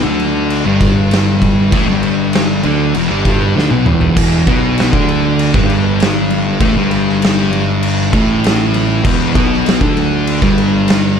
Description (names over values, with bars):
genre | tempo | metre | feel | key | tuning
stoner and doom metal | 98 BPM | 4/4 | straight | E minor | A4 = 440 Hz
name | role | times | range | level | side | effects
thick fuzz guitar | riff | 0.0-11.2 s | E2 to D4 | -16 LUFS | left 8 dB | distortion
thick fuzz guitar | riff | 0.0-11.2 s | E2 to D4 | -17 LUFS | right 11 dB | distortion
fuzz fingered electric bass | bass | 0.0-11.2 s | E1 to D2 | -19 LUFS | right 1 dB | overdrive
oversized low-tuned drum kit | drums | 0.2-11.0 s | crash cymbal, kick drum, snare drum, toms | -16 LUFS | equal | none
room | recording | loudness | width
studio reverb | dark, warm production | -11 LUFS | side -7 dB against mid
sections
0.0-4.2 A section; 4.2-11.2 B section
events
drum fill 3.6-4.2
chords
0.0 Em